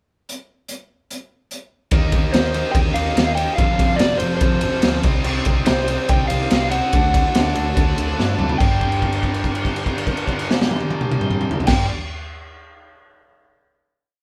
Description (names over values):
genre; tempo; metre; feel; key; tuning
garage rock duo or trio; 144 BPM; 4/4; straight; G minor; A4 = 440 Hz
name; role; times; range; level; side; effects
raw garage drum kit; drums; 0.3-11.8 s; crash cymbal, hi-hat, kick drum, ride cymbal, snare drum, toms; -22 LUFS; equal; none
overdriven combo organ; sustained chords; 1.9-11.9 s; Eb4 to A5; -35 LUFS; equal; none
fuzz guitar; riff; 1.9-11.9 s; F2 to Eb4; -27 LUFS; equal; distortion
hollow-body short-scale picked electric bass; bass; 1.9-11.9 s; F1 to G2; -27 LUFS; equal; overdrive
overdriven slide guitar; melody; 2.3-11.9 s; C5 to G5; -26 LUFS; equal; none
room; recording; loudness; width
moderate large studio reverb, RT60 0.9 s; band playing live in one room; -19 LUFS; mono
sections
0.3-1.9 pickup bar; 1.9-8.6 pre-chorus; 8.6-11.9 final chord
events
transistor combo organ fill 7.8-8.6; drum fill 8.2-8.6; held note 8.6-11.7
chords
0.3 N.C.; 1.9 Eb; 3.6 F; 5.0 Cm; 6.9 D; 8.6 Gm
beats
| 0.26 0.68 1.09 1.51 | 1.92 2.34 2.75 3.17 | 3.58 4.00 4.42 4.84 | 5.25 5.67 6.09 6.51 | 6.93 7.35 7.77 8.19 | 8.61 9.02 9.44 9.86 | 10.28 10.69 11.11 11.52